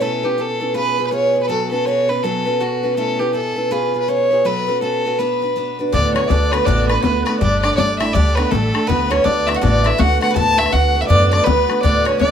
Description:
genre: celtic folk, Celtic hornpipe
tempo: 162 BPM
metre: 4/4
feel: swing 61% on 8ths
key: D major from 5.9 s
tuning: A4 = 440 Hz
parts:
  - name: warm fiddle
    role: melody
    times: 0.0-12.3 s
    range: F#4 to A5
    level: -19 LUFS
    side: equal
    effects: plate reverb
  - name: picked steel-string acoustic guitar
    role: accompaniment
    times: 0.0-12.3 s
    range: D2 to B4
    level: -20 LUFS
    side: equal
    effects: none
  - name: clear cello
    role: drone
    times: 0.0-6.0 s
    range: B2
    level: -29 LUFS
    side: equal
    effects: none
  - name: Irish bouzouki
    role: second line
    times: 5.9-12.3 s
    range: A3 to B4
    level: -26 LUFS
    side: right 2 dB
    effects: none
  - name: musette accordion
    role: second line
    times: 5.9-12.3 s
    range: A4 to A5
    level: -26 LUFS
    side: equal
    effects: none
  - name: upright bass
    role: bass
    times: 5.9-12.3 s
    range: G1 to F#2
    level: -19 LUFS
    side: equal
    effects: none
  - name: bodhran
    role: percussion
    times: 5.9-12.3 s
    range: none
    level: -22 LUFS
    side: left 6 dB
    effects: none
room: moderate studio ambience, RT60 0.5 s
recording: none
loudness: -14 LUFS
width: side -8 dB against mid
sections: 0.0-5.9 A section; 5.9-12.3 B section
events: none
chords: 0.0 A/B; 0.8 C#7; 1.5 F#m/B; 3.0 A/B; 3.7 C#7; 4.5 F#m/B; 5.2 Bm; 5.9 D6; 7.4 Gsus2; 8.9 D6; 10.4 Bm7/D

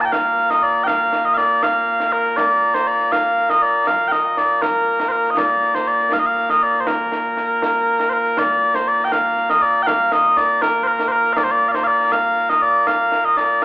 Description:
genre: scottish traditional, Scottish pipe music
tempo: 80 BPM (dotted quarters)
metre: 6/8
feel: straight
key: Bb major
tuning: A4 = 438 Hz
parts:
  - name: mellow small bagpipes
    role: melody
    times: 0.0-13.6 s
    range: Bb2 to A5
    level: -15 LUFS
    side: equal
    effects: none
  - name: concert snare drum and concert bass drum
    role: drums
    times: 0.0-13.6 s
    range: none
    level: -28 LUFS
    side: right 1 dB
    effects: none
room: wet large studio reverb, RT60 1.1 s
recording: band playing live in one room, telephone sound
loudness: -15 LUFS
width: side -20 dB against mid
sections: 0.0-8.4 A section; 8.4-13.6 A section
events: none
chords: none

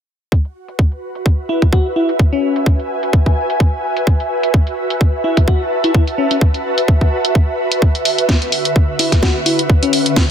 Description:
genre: bass house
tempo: 128 BPM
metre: 4/4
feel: swing 56% on 16ths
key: F# minor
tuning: A4 = 440 Hz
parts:
  - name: electronic kick drum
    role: drums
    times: 0.3-10.3 s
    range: none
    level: -12 LUFS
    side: equal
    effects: none
  - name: ethereal airy pad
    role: texture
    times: 1.0-10.3 s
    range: D3 to A5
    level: -19 LUFS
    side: right 1 dB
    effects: ensemble chorus, built-in reverb, sidechain pumping
  - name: garage drum kit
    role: drums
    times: 0.5-10.3 s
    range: hi-hat, snare drum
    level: -18 LUFS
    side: equal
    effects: low-pass filter on hats, low-pass filter on snare
  - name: bell-like FM electric piano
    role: melody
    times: 1.5-10.3 s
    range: C#4 to F#4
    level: -19 LUFS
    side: left 3 dB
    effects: chorus, tape echo
room: moderate digital room reverb, RT60 0.9 s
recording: dense, heavily limited modern master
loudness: -13 LUFS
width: side -8 dB against mid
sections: 0.3-10.3 A section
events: filter sweep on drum 0.3-10.3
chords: 0.3 F#m7; 7.8 Dadd9

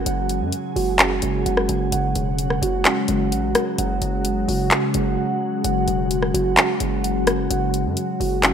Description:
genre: hip hop, trap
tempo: 129 BPM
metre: 4/4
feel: half-time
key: unclear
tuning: A4 = 440 Hz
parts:
  - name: glassy FM pad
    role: sustained chords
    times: 0.0-8.5 s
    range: C#3 to G#4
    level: -24 LUFS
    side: left 2 dB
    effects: ensemble chorus, built-in reverb
  - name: muted felt-like synth keys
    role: arpeggios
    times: 0.0-8.5 s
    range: G#3 to F#5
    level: -24 LUFS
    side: right 6 dB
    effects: chorus, tape echo
  - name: hard-hitting 808-style bass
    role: bass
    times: 0.0-8.5 s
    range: E1 to F#2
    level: -26 LUFS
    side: left 1 dB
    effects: none
  - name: trap drum kit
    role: drums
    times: 0.1-8.5 s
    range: handclaps, hi-hat, rim click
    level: -20 LUFS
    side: left 1 dB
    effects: none
room: moderate lush hall reverb, RT60 1.9 s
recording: rough home demo mix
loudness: -18 LUFS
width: side -8 dB against mid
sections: 0.0-8.5 A section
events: break 5.2-5.6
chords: 0.0 F#sus2

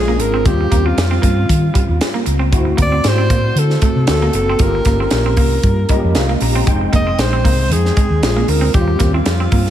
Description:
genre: polished 1980s jazz-funk pop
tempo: 116 BPM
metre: 4/4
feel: swing 54% on 16ths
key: unclear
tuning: A4 = 440 Hz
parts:
  - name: breathy alto saxophone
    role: melody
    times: 0.0-9.7 s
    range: F4 to Eb5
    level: -20 LUFS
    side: equal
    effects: none
  - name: overdriven tine electric piano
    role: accompaniment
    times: 0.0-9.7 s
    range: G3 to Bb5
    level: -21 LUFS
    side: left 1 dB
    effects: ensemble chorus, slapback echo
  - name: hollow-body short-scale fingered electric bass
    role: bass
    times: 0.0-9.7 s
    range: F1 to Eb3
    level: -16 LUFS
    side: equal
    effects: none
  - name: electric guitar at the edge of break-up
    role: riff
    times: 0.1-9.6 s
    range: G3 to C4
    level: -24 LUFS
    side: right 4 dB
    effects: lush chorus, slapback echo
  - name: tight funk drum kit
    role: drums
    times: 0.2-9.7 s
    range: hi-hat, kick drum, snare drum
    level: -17 LUFS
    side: equal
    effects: none
room: light reverb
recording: none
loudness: -12 LUFS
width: side -11 dB against mid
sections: 0.0-9.7 A section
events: tine electric piano fill 5.6-6.7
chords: 0.5 Eb13; 2.5 D7; 4.1 D7b13; 4.6 Gm7b5; 6.7 Fm9; 8.2 Bb9; 8.7 Eb13

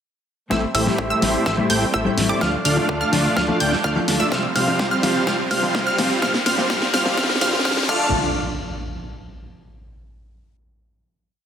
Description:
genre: EDM, festival progressive house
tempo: 126 BPM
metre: 4/4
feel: straight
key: D minor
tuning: A4 = 440 Hz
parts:
  - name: mellow electric guitar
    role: accompaniment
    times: 0.5-8.1 s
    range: A2 to F4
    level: -26 LUFS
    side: left 2 dB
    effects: sidechain pumping, digital delay
  - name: rich studio string section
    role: sustained chords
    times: 0.5-8.1 s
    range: D3 to A5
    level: -29 LUFS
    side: right 1 dB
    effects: none
  - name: wide unison pluck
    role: arpeggios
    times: 0.5-8.1 s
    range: D6 to G6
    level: -25 LUFS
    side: right 1 dB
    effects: sidechain pumping, digital delay
  - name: dense compressed supersaw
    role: riff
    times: 0.5-8.1 s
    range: G3 to G5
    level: -22 LUFS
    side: right 1 dB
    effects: sidechain pumping, low-pass filter, digital delay
  - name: fat analog bass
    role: bass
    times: 0.5-8.1 s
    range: A1 to D2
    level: -29 LUFS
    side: equal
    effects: sidechain pumping
  - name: big-room dance drum kit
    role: drums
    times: 0.5-8.0 s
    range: crash cymbal, hi-hat, snare drum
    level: -24 LUFS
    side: equal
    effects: none
  - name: electronic kick drum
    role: drums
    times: 0.5-8.0 s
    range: none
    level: -28 LUFS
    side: equal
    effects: high-pass filter on kick
  - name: riser and impact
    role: sound effects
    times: 3.4-9.8 s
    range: none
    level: -30 LUFS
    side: left 1 dB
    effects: none
room: wet concert hall reverb, RT60 1.8 s, digital ambience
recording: dense, heavily limited modern master, high-pass filter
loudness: -17 LUFS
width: side -8 dB against mid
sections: 0.5-8.1 build; 8.1-10.0 final hit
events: build-up 0.5-8.1; drum fill 0.5-8.1; filter sweep on supersaw synth 0.5-8.1; filter sweep 0.5-8.1; riser 3.4-8.1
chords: 0.5 Am7; 2.4 Dm; 4.3 Csus4; 6.2 Bbadd9; 7.9 Dm; 8.1 N.C.

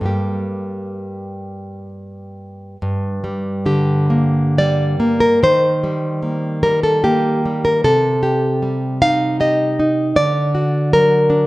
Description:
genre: romantic piece for solo classical guitar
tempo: 62-81 BPM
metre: 3/4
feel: rubato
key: G minor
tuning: A4 = 438 Hz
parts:
  - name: nylon-string guitar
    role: solo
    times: 0.0-11.5 s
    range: G2 to F5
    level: -15 LUFS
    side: equal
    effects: none
room: moderate recital hall reverb, RT60 1.4 s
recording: dark, warm production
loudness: -14 LUFS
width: side -19 dB against mid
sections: 0.0-2.8 A section; 2.8-11.5 B section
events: none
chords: 0.1 Gm; 5.4 Eb; 7.8 Am7b5/C; 10.2 D

